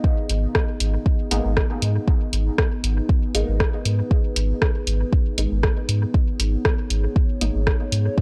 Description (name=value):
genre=dub techno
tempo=118 BPM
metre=4/4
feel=swing 55% on 16ths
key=G# minor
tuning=A4 = 440 Hz
part: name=dark analog pad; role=sustained chords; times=0.0-8.2 s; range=B3 to D#5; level=-33 LUFS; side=equal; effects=chorus, phaser, sidechain pumping
part: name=electronic kick drum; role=drums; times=0.0-8.2 s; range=none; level=-22 LUFS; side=equal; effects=none
part: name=warm sub bass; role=bass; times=0.3-8.1 s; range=G#1 to G#2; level=-24 LUFS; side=equal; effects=transformer saturation, sidechain pumping
part: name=punchy analog drum machine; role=drums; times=0.3-8.0 s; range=hi-hat, rim click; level=-27 LUFS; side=equal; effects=dub echo
part: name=filtered dub chord stab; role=stabs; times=1.3-7.6 s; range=G#3 to D#4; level=-34 LUFS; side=equal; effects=phaser, sidechain pumping, dub echo
room=little or no reverb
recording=dry, gritty hardware recording, transformer saturation, cassette tape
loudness=-21 LUFS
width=mono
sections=0.0-8.2 A section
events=none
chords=0.0 G#m